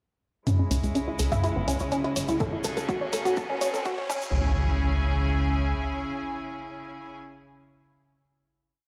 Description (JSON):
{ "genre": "melodic techno", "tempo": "124 BPM", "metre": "4/4", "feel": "straight", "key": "C# minor", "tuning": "A4 = 440 Hz", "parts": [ { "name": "bright chamber string section", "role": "sustained chords", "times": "0.5-7.2 s", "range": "C#3 to G#5", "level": "-36 LUFS", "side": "equal", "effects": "sidechain pumping, low-pass filter" }, { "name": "woody wave-folded pluck", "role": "arpeggios", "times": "0.5-4.5 s", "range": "G#3 to A5", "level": "-31 LUFS", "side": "equal", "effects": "ensemble chorus, sidechain pumping, delay" }, { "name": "analog drone", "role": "drone", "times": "1.0-7.2 s", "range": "C#3", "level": "-38 LUFS", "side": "equal", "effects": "chorus, sidechain pumping" }, { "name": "punchy analog drum machine", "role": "drums", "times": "0.5-4.2 s", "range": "crash cymbal, hi-hat, toms", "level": "-33 LUFS", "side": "equal", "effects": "none" }, { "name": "egg shaker", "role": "percussion", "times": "0.5-4.3 s", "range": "none", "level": "-42 LUFS", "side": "equal", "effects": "none" }, { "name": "riser and impact", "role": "sound effects", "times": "2.0-7.2 s", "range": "none", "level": "-39 LUFS", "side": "equal", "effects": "none" }, { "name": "tight sequencer bass", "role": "bass", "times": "0.7-5.8 s", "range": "G#1 to C#2", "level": "-29 LUFS", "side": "equal", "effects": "sidechain pumping" }, { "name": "electronic kick drum", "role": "drums", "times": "2.4-4.2 s", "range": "none", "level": "-34 LUFS", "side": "equal", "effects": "overdrive" } ], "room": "moderate lush hall reverb, RT60 2.5 s", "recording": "played on a big sound system in a bare room, large studio reverb, high-pass filter", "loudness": "-27 LUFS", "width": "mono", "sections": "0.5-4.3 build; 4.3-8.2 final hit", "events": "build-up 0.5-4.3; filter sweep on synth pluck 0.5-4.3; filter sweep on string section 0.5-4.3; filter sweep 0.5-4.3; riser 2.0-4.3", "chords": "0.5 C#m; 2.4 F#madd9/C#; 4.1 C#m" }